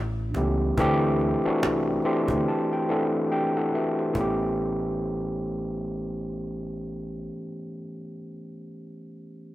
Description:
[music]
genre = R&B, neo-soul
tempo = 71 BPM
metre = 4/4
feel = swing 58% on 16ths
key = A dorian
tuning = A4 = 439 Hz
[part]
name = upright bass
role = bass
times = 0.0-7.3 s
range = A1 to D2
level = -32 LUFS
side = right 1 dB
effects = none
[part]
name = cajon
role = drums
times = 0.2-4.4 s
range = none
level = -31 LUFS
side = right 1 dB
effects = none
[part]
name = overdriven tine electric piano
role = accompaniment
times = 0.4-9.5 s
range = E3 to C6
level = -26 LUFS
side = equal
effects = none
[sound]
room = studio reverb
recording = rough home demo mix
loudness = -24 LUFS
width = side -15 dB against mid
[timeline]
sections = 0.0-4.1 A section; 4.1-7.5 B section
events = tine electric piano fill 1.6-4.1; break 2.5-4.1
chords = 0.0 A7; 0.8 D7sus4; 4.1 A7

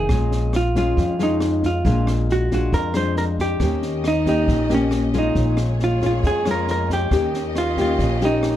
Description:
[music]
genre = bossa nova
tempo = 137 BPM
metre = 4/4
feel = straight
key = Bb minor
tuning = A4 = 441 Hz
[part]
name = vintage hollow-body jazz guitar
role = melody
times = 0.0-8.6 s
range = Db4 to C5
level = -22 LUFS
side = right 1 dB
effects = none
[part]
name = nylon-string guitar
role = accompaniment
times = 0.0-8.6 s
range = F2 to G4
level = -24 LUFS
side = left 3 dB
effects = none
[part]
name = upright bass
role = bass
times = 0.0-8.6 s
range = Bb1 to F2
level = -23 LUFS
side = equal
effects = none
[part]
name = open jazz drum kit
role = drums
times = 0.1-8.5 s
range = kick drum, rim click, snare drum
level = -28 LUFS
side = equal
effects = none
[part]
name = warm studio string section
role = sustained chords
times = 3.6-8.6 s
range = Bb3 to Eb5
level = -32 LUFS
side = equal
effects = none
[sound]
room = little or no reverb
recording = dark, warm production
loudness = -18 LUFS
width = side -12 dB against mid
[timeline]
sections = 0.0-8.6 A section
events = none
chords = 0.1 Bbm7; 1.8 Bb7; 3.6 Eb7; 5.4 Bbm7; 7.1 Eb7

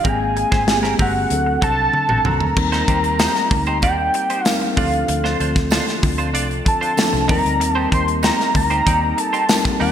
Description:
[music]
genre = polished 1980s jazz-funk pop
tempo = 95 BPM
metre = 4/4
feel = straight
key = unclear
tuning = A4 = 440 Hz
[part]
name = fat analog lead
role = melody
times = 0.0-9.9 s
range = F5 to C6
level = -20 LUFS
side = equal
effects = chorus
[part]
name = mellow tine electric piano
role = accompaniment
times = 0.0-9.9 s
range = F3 to Bb4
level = -24 LUFS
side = left 3 dB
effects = wide subtle chorus
[part]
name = clean electric guitar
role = riff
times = 0.0-9.9 s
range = C4 to D5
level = -26 LUFS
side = right 5 dB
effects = analog chorus
[part]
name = vintage muted fingered electric bass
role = bass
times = 0.0-9.9 s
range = G1 to Eb2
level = -23 LUFS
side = equal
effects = none
[part]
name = modern studio drum kit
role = drums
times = 0.0-9.9 s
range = crash cymbal, hi-hat, kick drum, snare drum, toms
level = -20 LUFS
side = equal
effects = gated reverb
[part]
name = hollow soft pad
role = sustained chords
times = 2.6-9.9 s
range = D3 to G4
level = -33 LUFS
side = right 1 dB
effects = chorus
[part]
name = tambourine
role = percussion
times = 3.2-9.6 s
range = none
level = -34 LUFS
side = right 9 dB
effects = none
[sound]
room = moderate lush hall reverb, RT60 1.8 s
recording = bright 1980s-style digital production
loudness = -15 LUFS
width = side -9 dB against mid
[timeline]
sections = 0.0-2.6 A section; 2.6-9.9 B section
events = drum fill 1.9-2.6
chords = 0.1 Abmaj9; 1.3 D7; 2.6 Eb6; 4.8 Dm7; 7.3 Eb6

